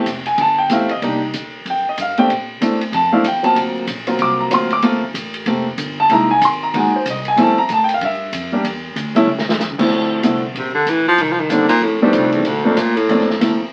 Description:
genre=jazz, small-group swing and bop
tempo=189 BPM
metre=4/4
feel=swing 61% on 8ths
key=F major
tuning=A4 = 441 Hz
part: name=clear concert grand piano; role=accompaniment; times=0.0-13.6 s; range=D2 to D6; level=-17 LUFS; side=equal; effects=none
part: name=upright bass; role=bass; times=0.0-13.6 s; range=F1 to C3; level=-32 LUFS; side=equal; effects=none
part: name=open jazz drum kit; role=drums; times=0.1-13.7 s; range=crash cymbal, hi-hat, kick drum, ride cymbal, snare drum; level=-28 LUFS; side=equal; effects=none
part: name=clear baritone saxophone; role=second line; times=10.6-13.4 s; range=D2 to F3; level=-18 LUFS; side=equal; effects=none
room=wet club reverb, RT60 0.5 s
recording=very old 78 rpm record, vinyl crackle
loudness=-17 LUFS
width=mono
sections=0.0-9.9 A section; 9.9-13.7 A section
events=drum fill 9.3-9.6; baritone saxophone solo 9.9-13.7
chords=0.0 Fmaj9; 1.0 Cm7; 1.7 F69; 2.3 Bbmaj9#11; 3.6 D7alt; 4.8 Gm11; 6.1 C7alt; 7.4 Fmaj9; 8.6 Dsus24; 9.3 A; 9.9 Dm7; 11.2 Cm7; 11.8 F13; 12.4 Bbmaj7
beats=0.07 0.38 0.70 | 1.02 1.34 1.65 1.97 | 2.29 2.61 2.92 3.24 | 3.56 3.88 4.20 4.51 | 4.83 5.15 5.47 5.78 | 6.10 6.42 6.74 7.05 | 7.37 7.69 8.01 8.32 | 8.64 8.96 9.27 9.59 | 9.91 10.23 10.54 10.86 | 11.18 11.50 11.81 12.13 | 12.45 12.77 13.08 13.40

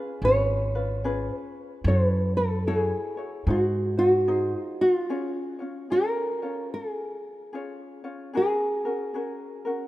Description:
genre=Hawaiian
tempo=74 BPM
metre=4/4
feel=swing 63% on 8ths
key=Db major from 5.1 s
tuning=A4 = 440 Hz
part: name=nylon-string guitar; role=melody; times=0.0-9.9 s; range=E#4 to C#5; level=-25 LUFS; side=equal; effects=none
part: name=ukulele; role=accompaniment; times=0.0-9.9 s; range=C#4 to C#5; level=-33 LUFS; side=left 2 dB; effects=none
part: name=upright bass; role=bass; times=0.2-4.5 s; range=G#1 to G#2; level=-26 LUFS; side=equal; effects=none
room=light reverb, small room ambience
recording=rough home demo mix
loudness=-23 LUFS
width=side -16 dB against mid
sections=0.0-5.1 A section; 5.1-9.9 B section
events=none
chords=0.0 C#7; 1.8 F#m7; 3.5 G#7; 5.1 Db; 8.3 Gbadd9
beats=0.22 1.03 | 1.85 2.66 3.47 4.28 | 5.09 5.90 6.71 7.53 | 8.34 9.15

